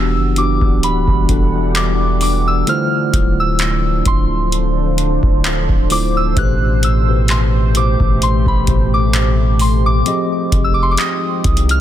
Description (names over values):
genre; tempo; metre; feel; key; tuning
contemporary R&B; 65 BPM; 4/4; swing 54% on 16ths; unclear; A4 = 440 Hz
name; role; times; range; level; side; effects
soft synth bell; melody; 0.0-11.8 s; B5 to F#6; -20 LUFS; equal; chorus, digital delay
mellow tine electric piano; accompaniment; 0.0-11.8 s; A2 to Eb5; -20 LUFS; left 1 dB; medium stereo tremolo
deep dark ambient pad; sustained chords; 0.0-11.8 s; D3 to G5; -23 LUFS; right 1 dB; chorus, built-in reverb, sidechain pumping
long sustained 808-style bass; bass; 0.0-11.8 s; D1 to C2; -17 LUFS; equal; none
booming analog drum machine; drums; 0.4-11.8 s; handclaps, hi-hat, kick drum; -17 LUFS; equal; none
room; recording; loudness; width
digital ambience; dense, heavily limited modern master; -12 LUFS; side -11 dB against mid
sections
0.0-11.8 A section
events
none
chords
0.0 Em9; 2.7 Dm9; 6.4 Am9; 10.1 Fm9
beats
0.83 1.75 | 2.67 3.60 4.52 5.44 | 6.37 7.29 8.21 9.14 | 10.06 10.98